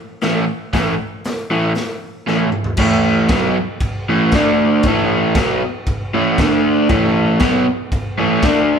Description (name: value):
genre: garage rock duo or trio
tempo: 117 BPM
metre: 4/4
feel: straight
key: unclear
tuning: A4 = 445 Hz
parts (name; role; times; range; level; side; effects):
- crunchy overdriven guitar; riff; 0.2-8.8 s; A2 to D4; -15 LUFS; right 1 dB; none
- raw garage drum kit; drums; 0.2-8.6 s; crash cymbal, hi-hat, kick drum, snare drum, toms; -21 LUFS; equal; none
room: moderate large studio reverb, RT60 1.4 s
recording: band playing live in one room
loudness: -14 LUFS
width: side -7 dB against mid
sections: 0.0-2.8 A section; 2.8-8.8 B section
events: drum fill 2.3-2.8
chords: 0.0 A5; 4.3 D5; 4.8 A5; 6.4 D5; 6.9 A5